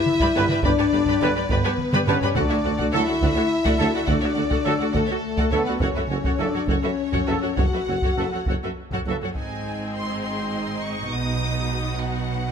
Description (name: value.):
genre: cinematic, epic orchestral film score.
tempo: 69 BPM (dotted quarters).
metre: 6/8.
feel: straight.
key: unclear.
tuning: A4 = 441 Hz.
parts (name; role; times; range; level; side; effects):
warm symphonic violin section; melody; 0.0-12.5 s; A4 to D#6; -31 LUFS; left 2 dB; none.
dark French horn section; sustained chords; 0.0-12.5 s; F#3 to F#4; -25 LUFS; left 4 dB; none.
taiko ensemble; drums; 0.1-10.5 s; none; -27 LUFS; equal; none.
rich symphonic violin section; second line; 0.2-12.5 s; F#4 to B5; -31 LUFS; left 1 dB; none.
clear symphonic viola section; accompaniment; 0.2-12.5 s; B3 to B4; -30 LUFS; equal; none.
warm chamber cello section; bass; 0.2-12.5 s; D2 to B2; -30 LUFS; right 3 dB; none.
clear trombone section; sustained chords; 0.3-9.2 s; C#3 to G3; -35 LUFS; right 4 dB; none.
warm tuba; bass; 0.3-9.1 s; F#1 to D2; -31 LUFS; right 5 dB; none.
clear trumpet section; stabs; 0.4-9.2 s; A4 to B4; -30 LUFS; right 2 dB; none.
rich symphonic double bass section; bass; 0.4-12.5 s; F#1 to D2; -30 LUFS; right 4 dB; none.
room: moderate scoring stage reverb, RT60 1.7 s.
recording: none.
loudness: -20 LUFS.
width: side -7 dB against mid.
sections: 0.0-9.4 A section; 9.4-12.5 B section.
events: drum fill 1.9-2.4.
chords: 0.0 G; 2.4 D; 5.8 F#m; 9.4 G#; 11.1 B.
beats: | 0.64 1.50 | 2.36 3.22 | 4.08 4.94 | 5.81 6.68 | 7.58 8.47 | 9.35 10.23 | 11.10 11.96.